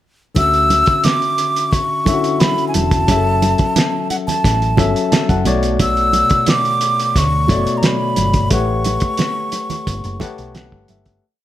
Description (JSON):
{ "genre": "lush 1970s-style soul", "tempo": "88 BPM", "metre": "4/4", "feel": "straight", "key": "D major", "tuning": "A4 = 441 Hz", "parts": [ { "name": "overdriven tine electric piano", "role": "accompaniment", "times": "0.3-11.3 s", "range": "B2 to A5", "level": "-20 LUFS", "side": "left 4 dB", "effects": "none" }, { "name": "breathy hollow jazz flute", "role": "melody", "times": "0.4-10.5 s", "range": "F#5 to E6", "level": "-18 LUFS", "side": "equal", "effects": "none" }, { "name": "hollow-body short-scale fingered electric bass", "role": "bass", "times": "0.4-11.2 s", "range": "E1 to D2", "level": "-20 LUFS", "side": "right 1 dB", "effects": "none" }, { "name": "cloth-damped thuddy drum kit", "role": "drums", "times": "0.4-11.2 s", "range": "hi-hat, kick drum, snare drum", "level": "-18 LUFS", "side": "right 1 dB", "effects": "none" }, { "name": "congas", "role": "percussion", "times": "0.4-11.1 s", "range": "none", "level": "-23 LUFS", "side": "right 5 dB", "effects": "none" } ], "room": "light reverb", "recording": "none", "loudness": "-13 LUFS", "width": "side -13 dB against mid", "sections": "0.4-11.2 verse", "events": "tine electric piano fill 4.8-5.8, 9.9-11.2; fade-out 8.5-11.2", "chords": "0.4 Dmaj9; 3.1 F#m7; 5.5 Bm9; 8.5 A13" }